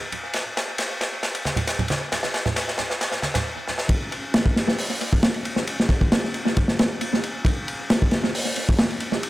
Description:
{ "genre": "breakbeat", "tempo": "135 BPM", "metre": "4/4", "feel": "straight", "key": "none", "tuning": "none", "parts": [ { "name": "crunchy breakbeat drum kit", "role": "drums", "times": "0.1-9.3 s", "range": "hi-hat, kick drum, ride cymbal, snare drum", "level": "-21 LUFS", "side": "equal", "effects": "high-pass filter on kick, high-pass filter on cymbals, high-pass filter on hats, high-pass filter on snare, high-pass filter on room, tape echo" }, { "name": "congas", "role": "percussion", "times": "1.5-3.4 s", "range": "none", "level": "-28 LUFS", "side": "right 2 dB", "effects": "tape echo" } ], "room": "moderate spring reverb, RT60 2.0 s", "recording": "echo-heavy mix", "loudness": "-21 LUFS", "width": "side -17 dB against mid", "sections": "0.0-3.9 A section; 3.9-9.3 B section", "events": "build-up 0.0-3.9; drum fill 0.0-3.5, 3.7; drop 3.9-9.3", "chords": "none", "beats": "| 0.34 0.79 1.23 1.68 | 2.12 2.56 3.01 3.45 | 3.90 4.34 4.79 5.23 | 5.67 6.12 6.56 7.01 | 7.45 7.90 8.34 8.79 | 9.23" }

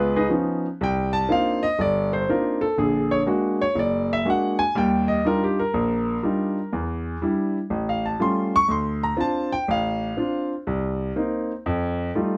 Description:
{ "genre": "solo jazz", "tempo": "122 BPM", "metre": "4/4", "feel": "swing 66% on 8ths", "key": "unclear", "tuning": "A4 = 440 Hz", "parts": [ { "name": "clear grand piano", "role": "solo", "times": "0.0-12.4 s", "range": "F#1 to C#6", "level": "-23 LUFS", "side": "equal", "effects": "none" } ], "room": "little or no reverb", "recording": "close, detailed microphones", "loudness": "-23 LUFS", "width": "mono", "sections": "0.0-12.4 A section", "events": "grand piano solo 0.0-12.4", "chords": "0.0 Db9; 0.8 Cm11; 2.8 Bbaug7; 4.8 Ebmaj9; 6.7 Em7; 7.7 Aaug7; 8.7 Dm7; 10.7 Cm7; 11.7 F9", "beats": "0.32 | 0.81 1.30 1.79 2.29 | 2.78 3.27 3.76 4.26 | 4.75 5.24 5.74 6.23 | 6.72 7.22 7.71 8.20 | 8.70 9.19 9.68 10.18 | 10.67 11.16 11.65 12.15" }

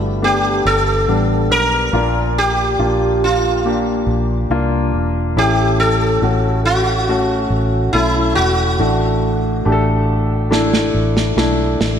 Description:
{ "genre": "pop ballad", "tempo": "70 BPM", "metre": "4/4", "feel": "straight", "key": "unclear", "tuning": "A4 = 439 Hz", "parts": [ { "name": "sitar", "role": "melody", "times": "0.0-11.3 s", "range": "E4 to Bb4", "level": "-18 LUFS", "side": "right 1 dB", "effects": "none" }, { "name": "warm baby grand piano", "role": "accompaniment", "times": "0.0-12.0 s", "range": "G2 to A4", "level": "-18 LUFS", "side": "left 2 dB", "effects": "none" }, { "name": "vintage muted fingered electric bass", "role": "bass", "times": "0.0-12.0 s", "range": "E1 to C2", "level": "-19 LUFS", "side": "right 1 dB", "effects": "none" }, { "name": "snare drum", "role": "drums", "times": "10.5-12.0 s", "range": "none", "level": "-18 LUFS", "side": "right 2 dB", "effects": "gated reverb" } ], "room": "moderate lush hall reverb, RT60 2.6 s", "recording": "bright 1980s-style digital production", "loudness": "-14 LUFS", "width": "side -8 dB against mid", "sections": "0.0-12.0 A section", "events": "drum fill 10.5-12.0", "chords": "0.0 Gadd9; 1.9 Bb; 5.4 A; 8.8 D/A", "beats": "0.23 1.08 | 1.94 2.80 3.66 4.51 | 5.37 6.23 7.08 7.94 | 8.80 9.66 10.51 11.37" }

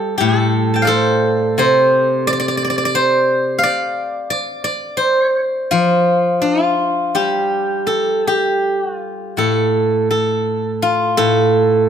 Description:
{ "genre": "chinese traditional, Chinese solo plucked strings", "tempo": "78-90 BPM", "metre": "4/4", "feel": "rubato", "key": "A jue mode", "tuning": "A4 = 442 Hz", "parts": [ { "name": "steel-string zither", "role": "solo", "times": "0.0-11.9 s", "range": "A2 to A5", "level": "-14 LUFS", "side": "equal", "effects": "none" } ], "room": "light reverb", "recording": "close, detailed microphones", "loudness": "-14 LUFS", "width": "side -8 dB against mid", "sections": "0.0-9.4 A section; 9.4-11.9 B section", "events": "none", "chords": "none", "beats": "0.21 | 0.91 1.60 2.29 2.98 | 3.65 4.33 5.03 5.74 | 6.46 7.17 7.89 8.64 | 9.38 10.11 10.82 11.53" }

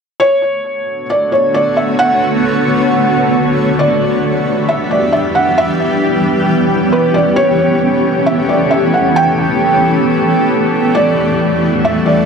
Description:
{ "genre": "hip hop", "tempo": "134 BPM", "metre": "4/4", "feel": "half-time", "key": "B minor", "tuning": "A4 = 438 Hz", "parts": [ { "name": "felt-muted upright piano", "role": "melody", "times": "0.2-12.3 s", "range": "B4 to G5", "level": "-15 LUFS", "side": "right 1 dB", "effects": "analog delay" }, { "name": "granular cloud pad", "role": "sustained chords", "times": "1.0-12.3 s", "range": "D3 to C#5", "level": "-13 LUFS", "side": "equal", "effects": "built-in reverb" }, { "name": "drifting glass-harmonics texture", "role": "texture", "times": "0.8-12.3 s", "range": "G3 to E5", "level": "-22 LUFS", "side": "equal", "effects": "chorus, built-in reverb" } ], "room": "moderate spring reverb, RT60 1.4 s, studio reverb", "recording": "echo-heavy mix", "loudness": "-11 LUFS", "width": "side -6 dB against mid", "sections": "0.2-12.3 A section", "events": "none", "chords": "0.2 Bm9; 3.8 G6; 7.4 A9; 10.9 Em11", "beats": "| 0.20 0.65 1.10 1.55 | 1.99 2.44 2.89 3.34 | 3.79 4.23 4.68 5.13 | 5.58 6.02 6.47 6.92 | 7.37 7.82 8.26 8.71 | 9.16 9.61 10.05 10.50 | 10.95 11.40 11.85" }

